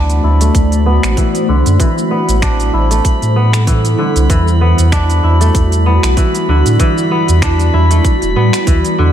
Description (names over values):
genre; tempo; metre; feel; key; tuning
organic downtempo; 96 BPM; 4/4; swing 56% on 16ths; E minor; A4 = 440 Hz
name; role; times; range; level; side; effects
granular cloud pad; sustained chords; 0.0-9.1 s; G3 to D5; -18 LUFS; equal; built-in reverb, sidechain pumping
kora; arpeggios; 0.0-9.1 s; D3 to E4; -17 LUFS; equal; low-pass filter, digital delay
warm sub bass; bass; 0.0-9.1 s; E1 to A2; -12 LUFS; equal; sidechain pumping
drifting glass-harmonics texture; texture; 0.1-9.1 s; B5; -24 LUFS; equal; chorus, built-in reverb
organic electronic drum kit; drums; 0.1-9.0 s; cabasa, finger snaps, hi-hat; -22 LUFS; right 1 dB; none
electronic kick drum; drums; 0.5-8.8 s; none; -14 LUFS; equal; none
room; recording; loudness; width
light reverb, digital ambience; none; -10 LUFS; side -10 dB against mid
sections
0.0-9.1 A section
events
filter sweep on kora 0.0-9.1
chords
0.0 D7; 1.8 Am7; 4.3 Em9